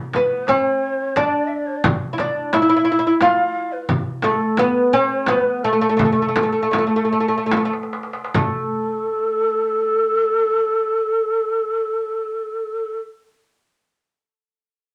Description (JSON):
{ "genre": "Arabic maqam ensemble", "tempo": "70-88 BPM", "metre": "3/4", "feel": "straight", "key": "A maqam suznak", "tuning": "A4 = 440 Hz", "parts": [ { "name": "breathy low ney", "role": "second line", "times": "0.1-13.0 s", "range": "G#4 to F5+23c", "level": "-24 LUFS", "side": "equal", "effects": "none" }, { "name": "darbuka", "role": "percussion", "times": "0.1-8.7 s", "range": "none", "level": "-31 LUFS", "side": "equal", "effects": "none" }, { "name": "frame drum", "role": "percussion", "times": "0.1-8.7 s", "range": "none", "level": "-25 LUFS", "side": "equal", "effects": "none" }, { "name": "oud", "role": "melody", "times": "0.2-13.0 s", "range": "A3 to F4+20c", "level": "-20 LUFS", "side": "equal", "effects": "none" } ], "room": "moderate club reverb, RT60 0.7 s", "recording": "none", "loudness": "-20 LUFS", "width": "mono", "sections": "0.0-8.4 A section; 8.4-13.5 B section", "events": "slowing down 3.9-8.4; drum fill 7.5-8.4", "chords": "none" }